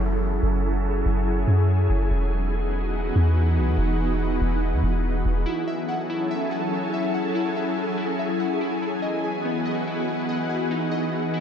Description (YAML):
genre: hip hop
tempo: 143 BPM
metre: 4/4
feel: half-time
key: F# dorian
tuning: A4 = 442 Hz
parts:
  - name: ethereal airy pad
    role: sustained chords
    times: 0.0-11.4 s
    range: E3 to A4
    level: -25 LUFS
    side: equal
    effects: ensemble chorus, built-in reverb, low-pass filter
  - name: soft 808-style bass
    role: bass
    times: 0.0-5.5 s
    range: E1 to F#2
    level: -22 LUFS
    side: equal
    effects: none
  - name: downlifter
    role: sound effects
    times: 0.0-2.1 s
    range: none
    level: -43 LUFS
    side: left 1 dB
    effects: none
  - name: glassy digital keys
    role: arpeggios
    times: 5.5-11.4 s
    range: B3 to G#5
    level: -29 LUFS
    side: left 2 dB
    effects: chorus, low-pass filter, ping-pong delay
room: light reverb, small room ambience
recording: none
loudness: -22 LUFS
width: side -8 dB against mid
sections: 0.0-5.5 A section; 5.5-11.4 B section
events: filter sweep on ambient pad 0.0-5.5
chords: 0.0 F#m7; 2.1 Emaj7; 5.5 F#m7; 8.8 Emaj7